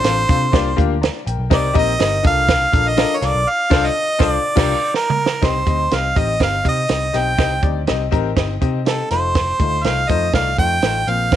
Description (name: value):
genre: uptempo 1960s-style soul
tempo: 122 BPM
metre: 4/4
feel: straight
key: C dorian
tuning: A4 = 440 Hz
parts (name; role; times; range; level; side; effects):
- clear harmonica; melody; 0.0-11.4 s; A4 to G5; -18 LUFS; right 2 dB; none
- clear concert grand piano; accompaniment; 0.0-11.4 s; A3 to Bb5; -23 LUFS; left 11 dB; none
- vintage muted picked electric bass; bass; 0.0-11.4 s; F1 to C3; -22 LUFS; equal; none
- compact cocktail drum kit; drums; 0.0-11.4 s; crash cymbal, hi-hat, kick drum, snare drum, toms; -18 LUFS; right 3 dB; vintage 12-bit sampler grit
room: light reverb, small room ambience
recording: 1960s-style stereo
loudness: -15 LUFS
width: side -11 dB against mid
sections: 0.0-5.4 A section; 5.4-11.4 B section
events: band accent 3.5-5.4; drum fill 4.9-5.4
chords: 0.0 Dm7; 0.5 Gm7/C; 1.5 Cm7; 2.2 Bbmaj7; 3.5 Dm7/C; 4.4 Gm7/C; 5.4 Cm; 9.1 F7